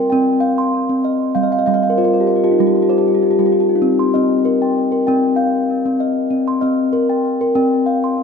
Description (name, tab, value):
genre	world meditative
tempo	97 BPM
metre	4/4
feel	swing 54% on 16ths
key	C minor pentatonic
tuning	A4 = 440 Hz
part	steel tongue drum	solo	0.0-8.2 s	G3 to C6	-14 LUFS	left 1 dB	diffuse ambient delay
room	moderate concert hall reverb, RT60 2.0 s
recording	none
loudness	-14 LUFS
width	side -6 dB against mid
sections	0.0-8.2 A section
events	steel tongue drum fill 1.4-3.8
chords	0.0 Cm; 1.4 Eb69/G; 3.8 Cm